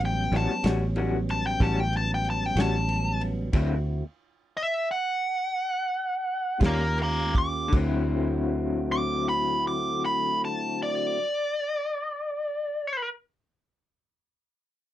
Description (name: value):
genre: slow blues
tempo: 52-62 BPM (dotted quarters)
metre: 12/8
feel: straight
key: D mixolydian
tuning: A4 = 440 Hz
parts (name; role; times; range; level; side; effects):
- mellow tonewheel organ; sustained chords; 0.0-11.2 s; F#3 to G4; -33 LUFS; right 2 dB; lush chorus
- fingered electric bass; bass; 0.0-11.2 s; A1 to Eb2; -28 LUFS; equal; none
- warm soul drum kit; drums; 0.0-7.9 s; crash cymbal, kick drum, ride cymbal, snare drum; -24 LUFS; equal; none
- biting lead guitar; melody; 0.1-13.1 s; Bb4 to D6; -27 LUFS; equal; overdrive
- electric guitar through a small old amp; accompaniment; 0.3-11.3 s; A2 to F#4; -29 LUFS; left 4 dB; tremolo
room: little or no reverb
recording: dry, close 1970s-style studio recording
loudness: -24 LUFS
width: side -12 dB against mid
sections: 0.0-7.7 A section; 7.7-12.3 B section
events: lead electric guitar solo 0.0-7.7; slowing down 2.2-7.7; stop 3.5-6.6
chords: 0.0 A13; 3.5 D9; 6.6 Eb9; 7.7 D9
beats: 0.64 1.59 2.56 | 3.53 4.52 5.54 6.60 | 7.72 8.86 10.01 11.16